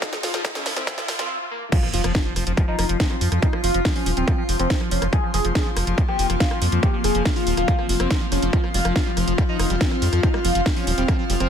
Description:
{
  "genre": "psychedelic trance",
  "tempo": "141 BPM",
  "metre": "4/4",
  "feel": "straight",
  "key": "unclear",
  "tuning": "A4 = 441 Hz",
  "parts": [
    { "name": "overdriven synth lead", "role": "melody", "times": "0.0-11.5 s", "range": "Bb3 to Ab4", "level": "-27 LUFS", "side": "left 1 dB", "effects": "chorus, phaser, sidechain pumping, ping-pong delay" },
    { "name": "evolving wavetable pad", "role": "sustained chords", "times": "0.0-11.5 s", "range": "F3 to F4", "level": "-29 LUFS", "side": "equal", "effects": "phaser, built-in reverb, sidechain pumping" },
    { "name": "liquid acid bass", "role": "riff", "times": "0.0-11.5 s", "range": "F3 to G3", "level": "-30 LUFS", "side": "left 1 dB", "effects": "chorus, auto-pan, cassette tape, sidechain pumping, ping-pong delay" },
    { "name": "electronic kick drum", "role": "drums", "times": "0.0-11.2 s", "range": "none", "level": "-21 LUFS", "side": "equal", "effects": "distortion, overdrive" },
    { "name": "techno drum kit", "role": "drums", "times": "0.0-11.5 s", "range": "crash cymbal, hi-hat, rim click, snare drum", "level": "-27 LUFS", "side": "right 1 dB", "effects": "overdrive" },
    { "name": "riser and impact", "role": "sound effects", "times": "0.0-3.4 s", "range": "none", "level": "-32 LUFS", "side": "right 1 dB", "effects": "none" },
    { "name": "airy breathy pad", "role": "texture", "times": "0.0-11.5 s", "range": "C4 to F6", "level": "-31 LUFS", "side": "left 2 dB", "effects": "chorus, sidechain pumping" },
    { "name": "round analog bass", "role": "bass", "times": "1.9-11.5 s", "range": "Eb1 to F2", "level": "-23 LUFS", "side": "equal", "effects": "none" }
  ],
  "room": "light reverb",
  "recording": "dense, heavily limited modern master, high-pass filter",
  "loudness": "-19 LUFS",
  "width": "side -8 dB against mid",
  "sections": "0.0-1.7 A section; 1.7-11.5 B section",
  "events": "build-up 0.0-1.7; drum fill 0.0-1.3; riser 0.0-1.3; break 1.3-1.7; drop 1.7-11.5; impact 1.7-3.4",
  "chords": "0.0 F5"
}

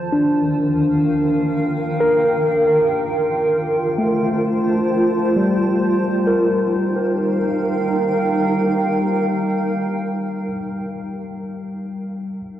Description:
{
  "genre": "ambient",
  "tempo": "67 BPM",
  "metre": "4/4",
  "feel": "straight",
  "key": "Eb lydian",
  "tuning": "A4 = 436 Hz",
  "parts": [
    { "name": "granular cloud pad", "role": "sustained chords", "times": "0.0-10.7 s", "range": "Eb3 to A5", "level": "-21 LUFS", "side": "right 1 dB", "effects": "built-in reverb" },
    { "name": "tine electric piano", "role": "arpeggios", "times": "0.0-12.4 s", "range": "F3 to Bb4", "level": "-19 LUFS", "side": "equal", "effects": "medium stereo tremolo, tape echo" }
  ],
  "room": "wet huge ambient reverb, RT60 7.4 s",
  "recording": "worn, warbling old tape, cassette tape, warbly pitch drift",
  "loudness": "-16 LUFS",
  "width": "side -11 dB against mid",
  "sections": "0.0-6.3 A section; 6.3-9.9 B section",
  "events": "none",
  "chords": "0.0 Eb"
}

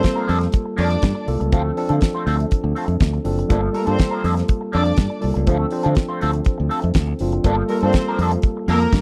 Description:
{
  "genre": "disco",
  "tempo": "122 BPM",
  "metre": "4/4",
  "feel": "straight",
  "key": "G minor",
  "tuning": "A4 = 440 Hz",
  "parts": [
    { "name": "rich studio string section", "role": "second line", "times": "0.0-9.0 s", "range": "Bb3 to D5", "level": "-27 LUFS", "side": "equal", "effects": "none" },
    { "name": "electric guitar at the edge of break-up", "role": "accompaniment", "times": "0.0-8.9 s", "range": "F3 to C5", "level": "-28 LUFS", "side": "equal", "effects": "wah" },
    { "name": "tine electric piano", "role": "accompaniment", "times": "0.0-9.0 s", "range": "F3 to C5", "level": "-26 LUFS", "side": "equal", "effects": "none" },
    { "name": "damped 70s drum kit", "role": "drums", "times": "0.0-9.0 s", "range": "hi-hat, kick drum, snare drum", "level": "-19 LUFS", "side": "equal", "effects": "none" },
    { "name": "modern bright fingered electric bass", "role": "bass", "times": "0.3-9.0 s", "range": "F#1 to D3", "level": "-23 LUFS", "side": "equal", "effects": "none" }
  ],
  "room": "studio ambience",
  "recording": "dry, close 1970s-style studio recording",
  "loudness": "-20 LUFS",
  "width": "mono",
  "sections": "0.0-9.0 A section",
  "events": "none",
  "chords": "0.0 Gm9; 1.5 Dm7; 3.5 Gm9; 5.5 Dm7; 7.4 Gm9"
}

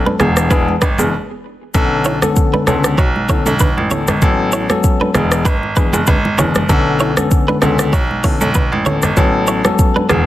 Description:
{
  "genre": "afrobeats",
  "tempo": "97 BPM",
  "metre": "4/4",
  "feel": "swing 55% on 16ths",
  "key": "unclear",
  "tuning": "A4 = 440 Hz",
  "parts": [
    { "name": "bell-like tine electric piano", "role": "accompaniment", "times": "0.0-10.3 s", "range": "D3 to A4", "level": "-18 LUFS", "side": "left 4 dB", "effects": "none" },
    { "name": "bright baby grand piano", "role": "bass", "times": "0.0-10.3 s", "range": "E1 to C#2", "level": "-18 LUFS", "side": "right 1 dB", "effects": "none" },
    { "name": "direct-recorded clean electric guitar", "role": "riff", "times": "0.1-10.2 s", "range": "B3 to C#5", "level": "-21 LUFS", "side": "right 3 dB", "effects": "harmonic tremolo, tape echo" },
    { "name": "congas", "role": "percussion", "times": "0.1-10.3 s", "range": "none", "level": "-22 LUFS", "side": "right 2 dB", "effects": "none" },
    { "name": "afro-pop drum kit", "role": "drums", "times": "0.2-10.3 s", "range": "hi-hat, kick drum, rim click, shaker", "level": "-16 LUFS", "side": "equal", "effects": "soft clipping on snare" }
  ],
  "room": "light reverb",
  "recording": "dense, heavily limited modern master",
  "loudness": "-12 LUFS",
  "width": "side -14 dB against mid",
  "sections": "0.0-1.7 A section; 1.7-10.3 B section",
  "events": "break 1.1-1.7",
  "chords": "0.2 E7; 1.7 Bm9; 4.2 A69; 5.1 E7; 6.7 Bm9; 9.2 A69"
}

